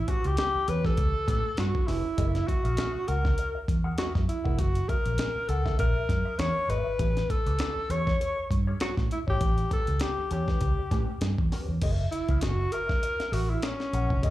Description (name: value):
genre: funk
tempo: 100 BPM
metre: 4/4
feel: swing 56% on 16ths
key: F# mixolydian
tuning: A4 = 440 Hz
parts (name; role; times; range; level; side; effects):
- breathy alto saxophone; melody; 0.0-14.3 s; C#4 to C#5; -30 LUFS; left 1 dB; slapback echo, tape echo
- mellow electric guitar; accompaniment; 0.1-14.3 s; C#4 to F#5; -40 LUFS; left 3 dB; wah, slapback echo
- breakbeat sampler-style drum kit; drums; 0.1-14.3 s; crash cymbal, hi-hat, kick drum, snare drum; -29 LUFS; equal; none
- vintage muted fingered electric bass; bass; 0.2-14.3 s; E#1 to A2; -28 LUFS; equal; none
room: digital ambience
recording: live gig heard through the venue's PA, club reverb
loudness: -25 LUFS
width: side -15 dB against mid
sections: 0.0-11.8 A section; 11.8-14.3 B section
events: alto saxophone solo 11.8-14.3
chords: 0.0 A9; 2.2 F#9; 7.0 A9; 11.8 F#9